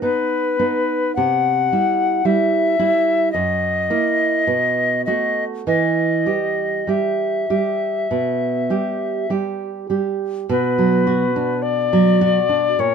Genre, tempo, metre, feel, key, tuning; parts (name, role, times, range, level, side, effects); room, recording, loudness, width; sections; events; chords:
romantic duo for recorder and classical guitar; 49-56 BPM; 4/4; rubato; E minor; A4 = 440 Hz
alto recorder; melody; 0.0-12.9 s; B4 to F#5; -19 LUFS; left 5 dB
nylon-string guitar; accompaniment; 0.0-12.9 s; F#2 to G4; -20 LUFS; right 5 dB
light reverb; minimal, uncompressed stereo recording; -16 LUFS; side -6 dB against mid
0.0-10.5 A section; 10.5-12.9 B section
0.0 B; 1.2 C; 3.3 F#7; 4.5 B7; 5.7 Em; 10.5 Bm